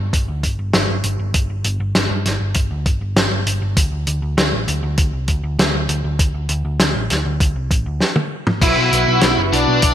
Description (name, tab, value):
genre	synthwave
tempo	99 BPM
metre	4/4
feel	straight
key	unclear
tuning	A4 = 440 Hz
part	hollow-body short-scale picked electric bass	bass	0.0-9.9 s	F#1 to G2	-21 LUFS	equal	sidechain pumping
part	electronic kick drum	drums	0.1-9.9 s	none	-18 LUFS	equal	overdrive
part	warm soul drum kit	drums	0.1-9.9 s	crash cymbal, hi-hat, snare drum, toms	-19 LUFS	equal	gated reverb
part	biting lead guitar	melody	8.6-9.9 s	D4 to E4	-17 LUFS	equal	overdrive
part	airy dreamy lead	second line	8.6-9.9 s	D4 to E4	-23 LUFS	left 2 dB	chorus
part	phased analog pad	sustained chords	8.8-9.9 s	E4 to F#5	-22 LUFS	equal	phaser, chorus, sidechain pumping
part	mellow synth brass	stabs	8.6-9.9 s	F#3 to F#4	-24 LUFS	left 3 dB	chorus
room	light reverb, small room reverb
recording	bright 1980s-style digital production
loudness	-16 LUFS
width	side -10 dB against mid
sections	0.0-8.6 A section; 8.6-9.9 B section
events	drum fill 8.0-8.6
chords	0.0 G5; 3.8 D5; 8.6 Bsus4